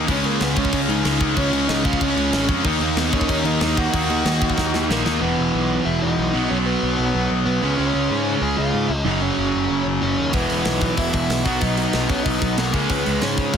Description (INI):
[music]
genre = punk rock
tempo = 187 BPM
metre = 4/4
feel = straight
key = unclear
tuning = A4 = 442 Hz
[part]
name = distorted electric guitar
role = riff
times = 0.0-13.6 s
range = E2 to D#4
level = -24 LUFS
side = left 12 dB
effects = overdrive
[part]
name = overdriven electric guitar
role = riff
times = 0.0-13.6 s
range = E2 to D#4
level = -23 LUFS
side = right 11 dB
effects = none
[part]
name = fuzz picked electric bass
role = bass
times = 0.0-13.6 s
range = E1 to G#2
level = -25 LUFS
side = equal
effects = overdrive
[part]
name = dark smooth lead guitar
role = melody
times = 0.1-13.6 s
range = A#3 to G#5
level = -25 LUFS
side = equal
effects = overdrive, tape echo
[part]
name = tight metal drum kit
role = drums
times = 0.1-5.1, 10.3-13.6 s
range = crash cymbal, hi-hat, kick drum, snare drum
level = -24 LUFS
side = left 1 dB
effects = soft clipping on kick
[sound]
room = light reverb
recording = dense, heavily limited modern master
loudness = -18 LUFS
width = side -7 dB against mid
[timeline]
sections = 0.0-5.2 A section; 5.2-13.6 B section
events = drum fill 4.6-5.2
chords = 0.1 C#5; 2.7 D#m; 5.2 E5; 6.3 B; 7.6 C#; 9.1 F#5; 10.3 E5; 11.5 B; 12.7 C#5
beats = | 0.09 0.41 0.73 1.05 | 1.37 1.69 2.01 2.33 | 2.65 2.97 3.29 3.61 | 3.94 4.26 4.58 4.90 | 5.22 5.54 5.86 6.18 | 6.50 6.82 7.14 7.46 | 7.78 8.10 8.42 8.74 | 9.06 9.38 9.70 10.02 | 10.34 10.66 10.98 11.30 | 11.62 11.94 12.26 12.58 | 12.89 13.21 13.53